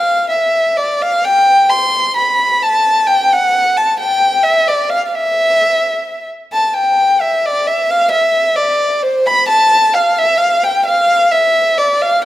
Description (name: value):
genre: musette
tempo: 131 BPM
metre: 3/4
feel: swing 54% on 8ths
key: unclear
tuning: A4 = 439 Hz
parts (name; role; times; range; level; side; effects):
- dark violin; solo; 0.0-12.2 s; C5 to C6; -11 LUFS; equal; none
room: moderate scoring stage reverb, RT60 1.6 s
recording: close, detailed microphones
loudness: -11 LUFS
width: side -14 dB against mid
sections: 0.0-6.7 A section; 6.7-12.2 A section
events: none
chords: none